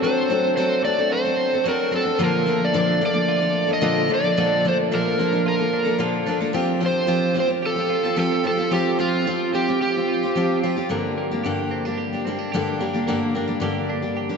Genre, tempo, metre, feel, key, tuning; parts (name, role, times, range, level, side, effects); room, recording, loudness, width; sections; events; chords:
acoustic pop; 110 BPM; 4/4; straight; G minor; A4 = 440 Hz
overdriven slide guitar; melody; 0.0-10.6 s; F4 to Eb5; -23 LUFS; right 1 dB
picked steel-string acoustic guitar; accompaniment; 0.0-14.4 s; G2 to A4; -22 LUFS; left 2 dB
twelve-string electric guitar; arpeggios; 0.0-14.4 s; F3 to G4; -28 LUFS; right 4 dB
wet cathedral reverb, RT60 5.1 s; in a vast, echoing space, nothing above 7.8 kHz; -19 LUFS; side -5 dB against mid
0.0-10.9 A section; 10.9-14.4 B section
0.0 D7/F#; 2.2 Bbmaj7; 6.5 Fsus2; 10.9 Gm